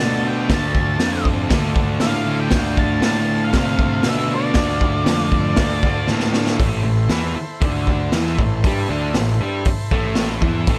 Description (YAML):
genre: garage rock duo or trio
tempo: 118 BPM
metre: 4/4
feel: straight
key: A minor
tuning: A4 = 440 Hz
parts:
  - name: octave-fuzz lead guitar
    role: melody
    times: 0.0-6.1 s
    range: D5 to A5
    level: -27 LUFS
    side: equal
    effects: distortion
  - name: overdriven combo organ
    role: sustained chords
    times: 0.0-10.8 s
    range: E4 to F5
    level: -34 LUFS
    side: equal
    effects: none
  - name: fuzz guitar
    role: riff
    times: 0.0-10.8 s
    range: A2 to G4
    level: -24 LUFS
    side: equal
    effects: distortion
  - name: fuzz picked electric bass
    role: bass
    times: 0.0-10.8 s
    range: A1 to C3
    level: -26 LUFS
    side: equal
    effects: overdrive
  - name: raw garage drum kit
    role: drums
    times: 0.5-10.8 s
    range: hi-hat, kick drum, snare drum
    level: -22 LUFS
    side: equal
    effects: none
room: little or no reverb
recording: none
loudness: -19 LUFS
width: mono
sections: 0.0-6.6 A section; 6.6-10.8 B section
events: drum fill 6.1-6.6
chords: 0.0 Dm; 6.6 Am